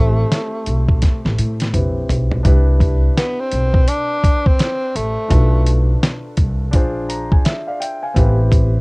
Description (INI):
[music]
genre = hip hop, jazz-hop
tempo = 84 BPM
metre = 4/4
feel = swing 63% on 16ths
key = unclear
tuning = A4 = 441 Hz
[part]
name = breathy tenor saxophone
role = melody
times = 0.0-6.0 s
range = A3 to D4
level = -22 LUFS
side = equal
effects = cassette tape, tape echo
[part]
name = dark concert grand piano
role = accompaniment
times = 0.0-8.8 s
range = C4 to Bb5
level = -25 LUFS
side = left 1 dB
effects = cassette tape
[part]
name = upright bass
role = bass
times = 0.0-8.8 s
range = A1 to A2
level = -16 LUFS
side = equal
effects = none
[part]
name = dusty soul sampler-style drum kit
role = drums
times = 0.3-8.7 s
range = hi-hat, kick drum, snare drum, toms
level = -15 LUFS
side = equal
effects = cassette tape
[sound]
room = little or no reverb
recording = home recording on cassette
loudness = -14 LUFS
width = side -30 dB against mid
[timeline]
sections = 0.0-2.4 A section; 2.4-8.8 B section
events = drum fill 1.0-2.4; grand piano fill 6.7-8.2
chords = 0.0 Am7; 2.4 Cmaj7; 5.3 Bm7b5; 6.7 Bb9; 8.2 Am9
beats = 0.31 1.02 1.73 | 2.45 3.16 3.88 4.59 | 5.31 6.02 6.73 7.45 | 8.16